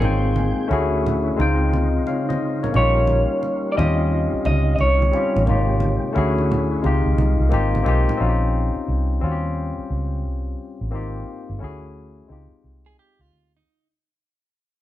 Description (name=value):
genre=R&B, neo-soul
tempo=88 BPM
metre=4/4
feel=swing 64% on 16ths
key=unclear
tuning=A4 = 441 Hz
part: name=electric guitar through a small old amp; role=melody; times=0.0-7.5 s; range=Ab4 to Eb5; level=-24 LUFS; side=right 1 dB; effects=spring reverb
part: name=barky tine electric piano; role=accompaniment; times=0.0-13.7 s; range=C3 to G5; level=-24 LUFS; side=left 4 dB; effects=overdrive
part: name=tonewheel organ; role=sustained chords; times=0.0-8.2 s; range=C3 to G5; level=-28 LUFS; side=right 2 dB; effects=slow rotary speaker, chorus vibrato
part: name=vintage muted fingered electric bass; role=bass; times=0.0-13.6 s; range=G1 to Eb2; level=-20 LUFS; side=equal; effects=none
part: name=congas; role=percussion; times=0.0-8.2 s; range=none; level=-29 LUFS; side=right 3 dB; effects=none
part: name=clean electric guitar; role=second line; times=12.9-13.9 s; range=Eb4 to Ab4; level=-63 LUFS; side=right 6 dB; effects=none
room=light reverb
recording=band playing live in one room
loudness=-18 LUFS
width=side -14 dB against mid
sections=0.0-8.2 A section; 8.2-13.6 B section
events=fade-out 8.2-13.6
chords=0.0 Abmaj9; 0.7 Dmaj9; 1.4 Dbmaj9; 2.7 Bbm6; 3.8 Eb13; 5.5 Abmaj9; 6.1 Dmaj9; 6.8 Dbmaj9; 7.5 Abmaj9; 8.2 Bbm69; 9.2 Eb13; 10.9 Abmaj9; 11.6 Dmaj9; 12.3 Dbmaj9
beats=| 0.01 0.69 1.38 2.06 | 2.74 3.42 4.10 4.79 | 5.47 6.15 6.83 7.51 | 8.19 8.88 9.56 10.24 | 10.92 11.60 12.29 12.97